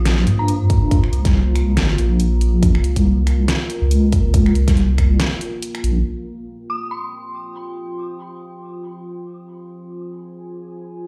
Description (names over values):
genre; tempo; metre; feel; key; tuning
deep dubstep; 140 BPM; 4/4; swing 57% on 16ths, half-time; F minor; A4 = 441 Hz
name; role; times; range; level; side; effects
dark detuned synth bell; melody; 0.0-1.0, 6.7-7.3 s; Bb5 to Eb6; -33 LUFS; equal; chorus, phaser, dub echo
deep dark ambient pad; sustained chords; 0.0-11.1 s; Bb3 to Ab5; -30 LUFS; equal; chorus, built-in reverb
deep soft wobble bass; bass; 0.0-6.0 s; Ab1 to G2; -18 LUFS; equal; chorus
dubstep drum kit; drums; 0.1-5.9 s; finger snaps, hi-hat, snare drum; -27 LUFS; equal; overdrive, low-pass filter on hats, low-pass filter on snare, low-pass filter on room
electronic kick drum; drums; 0.7-5.1 s; none; -19 LUFS; equal; none
room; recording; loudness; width
digital ambience; played on a big sound system in a bare room, large studio reverb; -17 LUFS; mono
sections
0.0-6.1 A section; 6.1-11.1 B section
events
none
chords
0.0 Bb5; 6.1 Fm